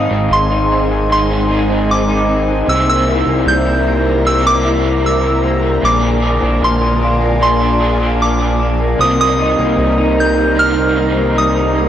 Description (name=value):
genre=dream pop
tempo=76 BPM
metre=4/4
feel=straight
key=unclear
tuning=A4 = 440 Hz
part: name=soft synth bell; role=melody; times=0.0-11.9 s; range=C6 to G6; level=-17 LUFS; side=right 1 dB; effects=chorus, tape echo
part: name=crunchy overdriven guitar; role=accompaniment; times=0.0-11.9 s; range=Ab2 to Ab4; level=-22 LUFS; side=right 3 dB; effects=harmonic tremolo, wide subtle chorus
part: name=ethereal airy pad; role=sustained chords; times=0.0-11.9 s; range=Eb4 to Bb5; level=-20 LUFS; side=right 2 dB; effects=ensemble chorus, built-in reverb
part: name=electric guitar through a small old amp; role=arpeggios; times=0.0-11.9 s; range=Ab2 to Ab4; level=-17 LUFS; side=left 2 dB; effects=analog chorus, tape echo
part: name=chorused synth bass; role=bass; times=0.0-11.9 s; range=Ab1 to C2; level=-18 LUFS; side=equal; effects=tube saturation
part: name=large celesta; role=texture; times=0.0-11.9 s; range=Bb4 to Bb5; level=-28 LUFS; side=right 1 dB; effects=none
room=moderate concert hall reverb, RT60 2.4 s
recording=transformer saturation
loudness=-11 LUFS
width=side -10 dB against mid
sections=0.0-11.9 A section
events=none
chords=0.0 Ab; 2.7 C7; 5.8 Bb7; 9.0 Cm7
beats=0.31 1.10 1.89 | 2.68 3.47 4.25 5.04 | 5.83 6.62 7.41 8.20 | 8.99 9.78 10.57 11.36